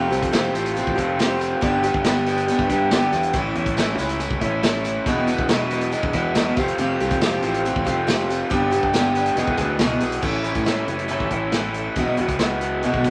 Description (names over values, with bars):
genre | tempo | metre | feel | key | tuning
folk rock and heartland rock | 139 BPM | 4/4 | straight | unclear | A4 = 440 Hz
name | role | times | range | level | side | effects
picked steel-string acoustic guitar | accompaniment | 0.0-13.1 s | E2 to A4 | -27 LUFS | equal | none
raw garage guitar | riff | 0.0-13.1 s | E2 to G#4 | -25 LUFS | equal | overdrive, spring reverb
fingered electric bass | bass | 0.0-13.1 s | E1 to A2 | -31 LUFS | equal | none
natural country drum kit | drums | 0.1-13.1 s | crash cymbal, hi-hat, kick drum, snare drum | -27 LUFS | equal | none
tambourine | percussion | 0.1-10.1 s | none | -44 LUFS | equal | none
room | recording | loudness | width
moderate studio reverb, RT60 0.8 s | none | -21 LUFS | mono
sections
0.0-10.2 A section; 10.2-13.1 B section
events
none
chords
0.0 Fadd9; 1.6 G; 3.3 A; 5.1 Eadd9; 6.6 Fadd9; 8.5 G; 9.4 Eadd9; 10.2 A; 12.0 Eadd9